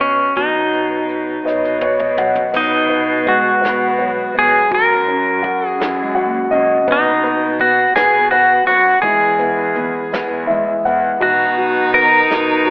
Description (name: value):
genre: folk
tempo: 55 BPM (dotted quarters)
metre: 6/8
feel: straight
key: B major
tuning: A4 = 440 Hz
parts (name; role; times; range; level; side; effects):
- pedal steel guitar; melody; 0.0-12.7 s; C#4 to A#4; -13 LUFS; equal; slapback echo
- warm upright piano; accompaniment; 0.0-12.7 s; B2 to F#5; -18 LUFS; equal; none
- warm cello; bass; 0.0-12.7 s; E2 to B2; -23 LUFS; equal; none
- soft brush drum kit; drums; 0.0-12.7 s; crash cymbal, hi-hat, kick drum, snare drum, toms; -27 LUFS; equal; none
- Celtic harp; arpeggios; 0.4-12.7 s; E3 to B3; -29 LUFS; equal; none
- bright violin; second line; 11.2-12.7 s; D#4; -18 LUFS; equal; none
room: moderate recital hall reverb, RT60 1.4 s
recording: telephone sound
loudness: -12 LUFS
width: side -26 dB against mid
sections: 0.0-2.5 A section; 2.5-12.7 B section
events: drum fill 1.5-2.5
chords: 0.0 Badd9; 2.5 B; 4.7 F#add9; 6.9 B; 9.0 E; 11.2 B